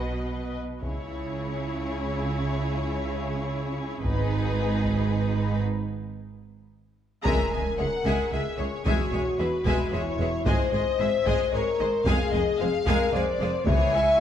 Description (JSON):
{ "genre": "cinematic, epic orchestral film score", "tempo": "112 BPM", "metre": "3/4", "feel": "straight", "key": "C# dorian", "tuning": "A4 = 440 Hz", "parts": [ { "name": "rich symphonic violin section", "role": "melody", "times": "0.0-14.2 s", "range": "B4 to A#5", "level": "-34 LUFS", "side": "left 4 dB", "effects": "none" }, { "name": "rich symphonic violin section", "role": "second line", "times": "0.0-14.2 s", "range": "G#4 to C#6", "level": "-35 LUFS", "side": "left 2 dB", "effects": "none" }, { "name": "rich symphonic viola section", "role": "accompaniment", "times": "0.0-14.2 s", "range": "E3 to B4", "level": "-34 LUFS", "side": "right 1 dB", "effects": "none" }, { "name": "dark French horn section", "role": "sustained chords", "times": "0.0-4.2, 7.3-14.2 s", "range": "G#3 to E5", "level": "-26 LUFS", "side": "left 3 dB", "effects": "none" }, { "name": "rich studio double bass section", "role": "bass", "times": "0.0-14.1 s", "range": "E1 to C#2", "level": "-31 LUFS", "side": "right 3 dB", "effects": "none" }, { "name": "rich symphonic cello section", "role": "bass", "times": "0.0-14.1 s", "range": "C#2 to C#3", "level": "-32 LUFS", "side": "right 3 dB", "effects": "none" }, { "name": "solo taiko drums", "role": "drums", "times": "0.8-14.2 s", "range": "none", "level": "-29 LUFS", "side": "equal", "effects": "none" }, { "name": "impact", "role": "sound effects", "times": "7.4-8.9 s", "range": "none", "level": "-41 LUFS", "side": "equal", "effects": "none" } ], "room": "moderate scoring stage reverb, RT60 1.9 s", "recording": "dark, warm production", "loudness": "-24 LUFS", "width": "side -9 dB against mid", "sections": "0.8-7.3 A section; 7.3-14.2 B section", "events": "break 5.7-7.3; drum fill 6.5-7.3; band accent 7.3-7.8; impact 7.3-8.9", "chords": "0.0 B; 0.8 C#m; 4.0 G#m; 7.3 C#m; 8.9 E; 10.5 G#; 12.1 Fm; 13.7 C#m" }